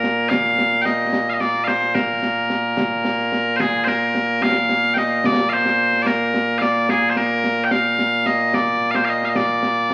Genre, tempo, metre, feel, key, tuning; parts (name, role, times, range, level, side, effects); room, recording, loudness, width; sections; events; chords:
scottish traditional, Scottish pipe music; 73 BPM (dotted quarters); 6/8; straight; Bb major; A4 = 440 Hz
loud bright bagpipes; melody; 0.0-9.9 s; Bb2 to G5; -20 LUFS; equal
concert snare drum and concert bass drum; drums; 0.0-9.9 s; -28 LUFS; equal
wet large studio reverb, RT60 1.2 s; very old 78 rpm record, vinyl crackle; -19 LUFS; mono
0.0-3.6 A section; 3.6-9.9 B section